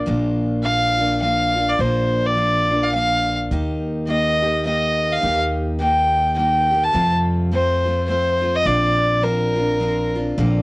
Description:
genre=folk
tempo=105 BPM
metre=3/4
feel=swing 60% on 8ths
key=Bb major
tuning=A4 = 440 Hz
part: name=picked steel-string acoustic guitar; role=accompaniment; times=0.0-10.6 s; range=F2 to G4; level=-23 LUFS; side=equal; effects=cassette tape
part: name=upright bass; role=bass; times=0.0-10.6 s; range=Bb1 to F2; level=-24 LUFS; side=equal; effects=none
part: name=rich fiddle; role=melody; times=0.6-10.1 s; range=Bb4 to A5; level=-18 LUFS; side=equal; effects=cassette tape
room=light reverb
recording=home recording on cassette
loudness=-16 LUFS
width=side -23 dB against mid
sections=0.0-10.4 A section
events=none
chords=0.0 Bb; 3.5 Eb; 6.9 F; 8.7 Bbadd9

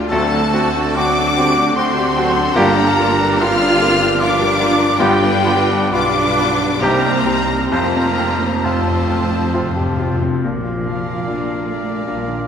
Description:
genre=classical, romantic movement for piano and orchestra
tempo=62-78 BPM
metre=3/4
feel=rubato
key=Bb major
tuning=A4 = 439 Hz
part: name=warm baby grand piano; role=melody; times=0.0-12.5 s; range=C2 to G4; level=-20 LUFS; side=left 2 dB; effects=none
part: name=rich symphonic violin section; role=second line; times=0.0-12.4 s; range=Eb4 to D5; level=-27 LUFS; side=left 2 dB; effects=none
part: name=rich symphonic viola section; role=accompaniment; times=0.0-12.4 s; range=D3 to Bb4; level=-26 LUFS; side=right 1 dB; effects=none
part: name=mellow tuba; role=bass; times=0.0-10.2 s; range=F1 to D2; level=-25 LUFS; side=right 4 dB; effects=none
part: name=rich studio double bass section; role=bass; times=0.0-12.5 s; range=G1 to F2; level=-28 LUFS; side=right 4 dB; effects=none
part: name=warm symphonic violin section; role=melody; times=0.1-12.4 s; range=F5 to F6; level=-23 LUFS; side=left 3 dB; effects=none
part: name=clear clarinet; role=second line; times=0.1-12.5 s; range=Eb4 to Bb4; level=-28 LUFS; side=equal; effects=none
part: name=mellow hollow silver concert flute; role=second line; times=0.1-12.5 s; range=F5 to F6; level=-24 LUFS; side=left 1 dB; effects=none
part: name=warm oboe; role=second line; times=0.1-12.5 s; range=G4 to F5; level=-26 LUFS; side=right 2 dB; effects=none
part: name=clear bassoon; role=accompaniment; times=0.1-12.5 s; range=Bb2 to C4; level=-28 LUFS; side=right 2 dB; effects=none
part: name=mellow French horn section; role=sustained chords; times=0.1-12.5 s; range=Bb3 to F4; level=-28 LUFS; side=left 2 dB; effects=none
part: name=warm trombone section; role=sustained chords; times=0.1-8.1 s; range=C3 to G3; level=-28 LUFS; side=right 4 dB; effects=none
part: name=dark trumpet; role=stabs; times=0.1-8.1 s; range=G4 to C5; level=-24 LUFS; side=right 1 dB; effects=none
part: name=rich studio cello section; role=bass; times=0.1-12.5 s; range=Eb3 to F4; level=-24 LUFS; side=right 3 dB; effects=none
part: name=timpani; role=percussion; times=7.7-10.4 s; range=F2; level=-24 LUFS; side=left 2 dB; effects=none
room=wet concert hall reverb, RT60 2.5 s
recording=none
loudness=-14 LUFS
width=side -8 dB against mid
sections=0.0-10.4 A section; 10.4-12.5 B section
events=timpani fill 7.7-10.4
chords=0.1 D7; 2.6 Gm7; 5.0 G7; 6.8 Cm7; 7.7 F; 10.4 Bb

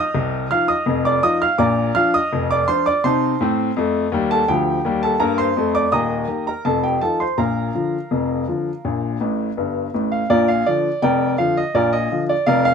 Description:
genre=ragtime piano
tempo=83 BPM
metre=2/4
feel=straight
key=Bb major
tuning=A4 = 436 Hz
part: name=clear upright piano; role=solo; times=0.0-12.7 s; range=Eb1 to F6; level=-17 LUFS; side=equal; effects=none
room=light reverb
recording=none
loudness=-17 LUFS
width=side -6 dB against mid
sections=0.0-10.3 A section; 10.3-12.7 B section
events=upright piano fill 9.2-10.3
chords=0.0 F7(no3); 1.6 Bb; 3.0 F7; 4.5 Bb/D; 5.9 Eb; 6.7 F7; 7.4 Bb

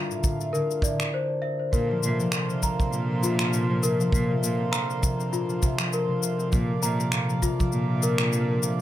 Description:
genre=folktronica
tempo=100 BPM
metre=4/4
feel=swing 56% on 16ths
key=Bb major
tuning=A4 = 440 Hz
part: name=celesta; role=second line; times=0.0-8.8 s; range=F4 to Bb5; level=-30 LUFS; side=left 3 dB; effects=ping-pong delay
part: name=pedal harmonium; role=sustained chords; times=0.0-8.8 s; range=D3 to D5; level=-34 LUFS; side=right 5 dB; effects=none
part: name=concert harp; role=arpeggios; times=0.0-8.8 s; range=A2 to C4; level=-27 LUFS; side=equal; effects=none
part: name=electronic cabasa and finger snaps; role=drums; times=0.1-8.8 s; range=none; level=-30 LUFS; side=left 2 dB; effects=overdrive
part: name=kick drum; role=drums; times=0.2-7.7 s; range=none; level=-25 LUFS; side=right 1 dB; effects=none
part: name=rich cello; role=bass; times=1.7-8.8 s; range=Bb2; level=-30 LUFS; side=right 1 dB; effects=none
room=moderate studio reverb, RT60 0.6 s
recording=none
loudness=-23 LUFS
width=side -13 dB against mid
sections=0.0-1.7 A section; 1.7-8.8 B section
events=filter sweep on harp 0.0-1.7; break 1.1-1.7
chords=0.0 Gmadd9 (rootless); 1.7 Bbadd9

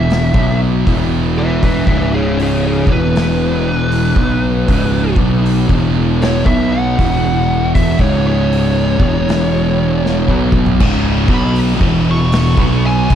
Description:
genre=stoner and doom metal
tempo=78 BPM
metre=4/4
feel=swing 63% on 8ths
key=C# minor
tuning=A4 = 440 Hz
part: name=fuzz lead guitar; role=melody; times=0.0-13.2 s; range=G#4 to C#6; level=-21 LUFS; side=equal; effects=distortion, digital delay
part: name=thick fuzz guitar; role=riff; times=0.0-13.2 s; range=C#2 to B3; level=-18 LUFS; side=left 9 dB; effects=distortion
part: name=thick fuzz guitar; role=riff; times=0.0-13.2 s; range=C#2 to B3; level=-18 LUFS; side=right 10 dB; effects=distortion
part: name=fuzz picked electric bass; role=bass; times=0.0-13.2 s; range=C#1 to B1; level=-18 LUFS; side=equal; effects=overdrive
part: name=oversized low-tuned drum kit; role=drums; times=0.1-13.2 s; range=crash cymbal, hi-hat, kick drum, snare drum, toms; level=-18 LUFS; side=equal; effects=none
part: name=heavy high-gain guitar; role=riff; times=10.8-13.2 s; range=C#2 to B3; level=-23 LUFS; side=equal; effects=distortion
room=studio reverb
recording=dark, warm production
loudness=-12 LUFS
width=side -9 dB against mid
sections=0.0-13.2 A section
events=lead electric guitar solo 0.0-13.2; drum fill 10.0-10.8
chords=0.3 Bsus4; 0.9 E5; 1.8 C#5; 2.8 E5; 4.1 C#5; 5.6 E5; 6.4 Bsus4; 7.0 E5; 7.9 C#5; 8.9 E5; 10.2 C#5; 11.8 E5; 12.5 C#5

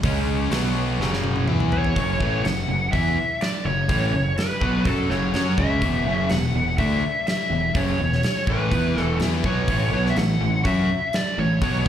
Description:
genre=hard rock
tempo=124 BPM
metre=4/4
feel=straight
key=F# minor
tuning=A4 = 439 Hz
part: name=overdriven semi-hollow guitar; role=riff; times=0.0-11.9 s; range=E2 to F#4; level=-27 LUFS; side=left 7 dB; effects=spring reverb, slapback echo
part: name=sludgy distorted guitar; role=riff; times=0.0-11.9 s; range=E2 to F#4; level=-27 LUFS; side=right 7 dB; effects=overdrive
part: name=growling fingered electric bass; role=bass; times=0.0-11.9 s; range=E1 to F#2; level=-25 LUFS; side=equal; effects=overdrive
part: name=huge arena drum kit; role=drums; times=0.0-11.9 s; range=hi-hat, kick drum, snare drum, toms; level=-26 LUFS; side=equal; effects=none
part: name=dark smooth lead guitar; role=melody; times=1.7-11.9 s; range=A4 to F#5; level=-25 LUFS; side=left 1 dB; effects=overdrive
room=small room ambience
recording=live gig heard through the venue's PA, club reverb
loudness=-19 LUFS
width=side -10 dB against mid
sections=0.0-2.0 A section; 2.0-11.9 B section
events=drum fill 1.0-2.0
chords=0.0 C#5; 0.5 B5; 1.0 F#5; 1.5 E5; 2.0 F#m; 5.8 Esus4; 9.7 A5

